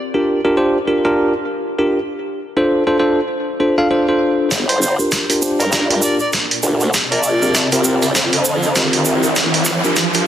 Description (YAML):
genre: glitch hop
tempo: 99 BPM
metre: 4/4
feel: swing 59% on 16ths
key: G minor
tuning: A4 = 439 Hz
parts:
  - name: bell-like tine electric piano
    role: stabs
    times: 0.1-10.3 s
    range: C4 to F5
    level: -16 LUFS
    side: equal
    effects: sidechain pumping, low-pass filter, tape echo
  - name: formant-sweep wobble bass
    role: bass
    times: 4.5-9.8 s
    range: G1 to G2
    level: -18 LUFS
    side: equal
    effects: chorus, overdrive, high-pass filter
  - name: boom bap sampler-style drum kit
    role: drums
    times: 4.5-10.2 s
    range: hi-hat, snare drum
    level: -19 LUFS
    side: right 1 dB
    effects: high-pass filter on snare, studio ambience, high-pass filter on hats
  - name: electronic kick drum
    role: drums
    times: 4.5-10.1 s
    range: none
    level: -33 LUFS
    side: left 1 dB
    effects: none
  - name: tube shaker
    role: percussion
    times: 4.5-10.2 s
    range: none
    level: -23 LUFS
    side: right 3 dB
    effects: none
  - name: riser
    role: sound effects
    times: 6.2-10.3 s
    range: none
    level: -22 LUFS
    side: right 1 dB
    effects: none
  - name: overdriven harmonica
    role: melody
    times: 4.7-7.7 s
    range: Bb4 to D5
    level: -24 LUFS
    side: equal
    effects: tape echo
room: moderate lush hall reverb, RT60 2.6 s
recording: dense, heavily limited modern master, high-pass filter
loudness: -14 LUFS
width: side -10 dB against mid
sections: 0.0-4.5 A section; 4.5-10.3 B section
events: build-up 4.5-10.3; drum fill 4.5-10.3; filter sweep on tine electric piano 4.5-10.3; riser 6.2-10.3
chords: 0.0 Gm7; 2.1 Dm7; 4.5 Gm7; 6.9 C7sus4; 9.4 Gm7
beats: 0.27 0.88 1.48 | 2.09 2.69 3.30 3.91 | 4.51 5.12 5.73 6.33 | 6.94 7.54 8.15 8.76 | 9.36 9.97